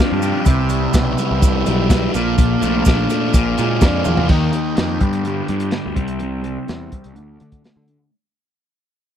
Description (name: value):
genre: psychedelic rock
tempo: 125 BPM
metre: 4/4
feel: straight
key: unclear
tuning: A4 = 440 Hz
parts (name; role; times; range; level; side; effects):
- combo organ; sustained chords; 0.0-8.1 s; E4 to G5; -27 LUFS; right 5 dB; low-pass filter
- fuzz guitar; riff; 0.0-8.1 s; G2 to G4; -19 LUFS; left 1 dB; distortion, phaser, low-pass filter
- crunchy breakbeat drum kit; drums; 0.0-8.0 s; crash cymbal, hi-hat, kick drum, snare drum, toms; -17 LUFS; equal; none
- fuzz picked electric bass; bass; 0.1-8.0 s; Bb1 to D3; -22 LUFS; equal; overdrive
- maracas; percussion; 0.2-4.2 s; none; -33 LUFS; right 13 dB; none
room: small room ambience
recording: dry, close 1970s-style studio recording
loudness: -15 LUFS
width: side -9 dB against mid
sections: 0.0-4.3 A section; 4.3-8.1 B section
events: drum fill 4.1; fade-out 4.3-8.1; filter sweep 4.3-8.1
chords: 0.5 Cmaj7; 2.1 Bbmaj7; 3.3 Bb7; 4.3 Eb; 5.0 G; 6.0 C; 7.2 D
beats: | 0.46 0.94 1.42 1.90 | 2.38 2.86 3.33 3.81 | 4.29 4.77 5.25 5.73 | 6.21 6.68 7.16 7.64